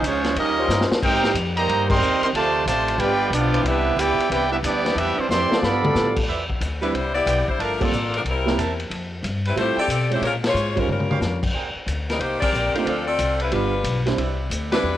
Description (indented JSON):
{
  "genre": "jazz, big band swing",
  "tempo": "182 BPM",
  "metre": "4/4",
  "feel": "swing 64% on 8ths",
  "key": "C major",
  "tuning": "A4 = 442 Hz",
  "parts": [
    { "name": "bright trumpet section", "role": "melody", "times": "0.0-6.2 s", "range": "G3 to C6", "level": "-22 LUFS", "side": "equal", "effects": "cassette tape" },
    { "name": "warm trombone section", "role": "second line", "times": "0.0-6.2 s", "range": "C3 to G4", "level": "-24 LUFS", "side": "right 6 dB", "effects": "cassette tape" },
    { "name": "upright bass", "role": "bass", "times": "0.0-15.0 s", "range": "G1 to B2", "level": "-26 LUFS", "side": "left 1 dB", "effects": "none" },
    { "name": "vintage drum kit", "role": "drums", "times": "0.0-14.8 s", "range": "crash cymbal, hi-hat, kick drum, ride cymbal, snare drum, toms", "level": "-26 LUFS", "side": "left 1 dB", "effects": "cassette tape" },
    { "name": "mellow trombone section", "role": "sustained chords", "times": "0.6-6.3 s", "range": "E3 to C5", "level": "-28 LUFS", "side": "left 2 dB", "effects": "cassette tape" },
    { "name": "clear trumpet section", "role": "stabs", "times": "6.3-15.0 s", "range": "C4 to A5", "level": "-33 LUFS", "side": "right 5 dB", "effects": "cassette tape" },
    { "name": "bright saxophone section", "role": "melody", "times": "6.8-15.0 s", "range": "F3 to D5", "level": "-23 LUFS", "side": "left 2 dB", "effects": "cassette tape" },
    { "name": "warm grand piano", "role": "accompaniment", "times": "6.8-14.8 s", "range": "G3 to Db5", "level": "-27 LUFS", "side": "right 6 dB", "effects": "cassette tape" }
  ],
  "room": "light reverb, small room ambience",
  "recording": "home recording on cassette",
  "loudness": "-19 LUFS",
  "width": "side -12 dB against mid",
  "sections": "0.0-6.3 A section; 6.3-15.0 B section",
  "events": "drum fill 0.7-1.0, 5.3-5.9, 10.9-11.2; band accent 1.8, 7.8, 10.4, 12.4, 14.7",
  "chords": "0.4 Eb13; 1.0 Abmaj9; 2.3 Dm7; 3.0 G7; 3.6 Cmaj9; 5.6 G9; 6.3 Cmaj9; 7.6 Gm11; 8.2 C7; 8.9 Fmaj9; 10.2 Bbm9; 10.9 Bbm6; 11.5 Abmaj9; 12.9 Dm7; 13.5 G7; 14.2 Cmaj9",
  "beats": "0.03 0.36 0.69 | 1.02 1.35 1.68 2.00 | 2.33 2.66 2.99 3.32 | 3.65 3.98 4.30 4.63 | 4.96 5.29 5.62 5.95 | 6.28 6.60 6.93 7.26 | 7.59 7.92 8.25 8.58 | 8.91 9.24 9.56 9.89 | 10.22 10.55 10.88 11.21 | 11.54 11.87 12.20 12.53 | 12.86 13.19 13.52 13.85 | 14.18 14.51 14.84"
}